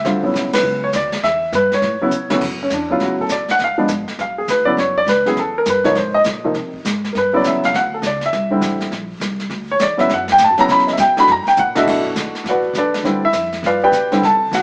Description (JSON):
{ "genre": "jazz piano trio", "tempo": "203 BPM", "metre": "4/4", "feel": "swing 63% on 8ths", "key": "D major", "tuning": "A4 = 441 Hz", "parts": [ { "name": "warm baby grand piano", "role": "melody", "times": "0.0-14.6 s", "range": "D2 to B5", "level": "-17 LUFS", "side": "equal", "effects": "none" }, { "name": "upright bass", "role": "bass", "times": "0.0-14.6 s", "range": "G#1 to D3", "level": "-30 LUFS", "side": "equal", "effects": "none" }, { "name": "jazz brush drum kit", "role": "drums", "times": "0.0-14.6 s", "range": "brushed snare drum, crash cymbal, hi-hat, kick drum, ride cymbal, snare drum, toms", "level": "-28 LUFS", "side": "equal", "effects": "none" } ], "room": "moderate stone room reverb, RT60 1.2 s", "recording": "band playing live in one room, small speaker sound", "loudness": "-17 LUFS", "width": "mono", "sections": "0.0-2.4 A section; 2.4-11.9 B section; 11.9-14.6 B section", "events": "band accent 0.5; drum fill 2.1, 11.6; grand piano solo 2.4-14.6", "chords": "0.0 Dmaj9; 1.2 Em; 1.8 A; 2.4 D69; 3.6 C#7b9; 4.8 F#5; 6.0 G#add9; 7.1 Gmaj7#11; 8.3 C9; 9.5 Dadd9; 10.7 Bsus4; 11.3 F#7; 11.9 Bm7; 13.0 Dm7; 13.6 G7" }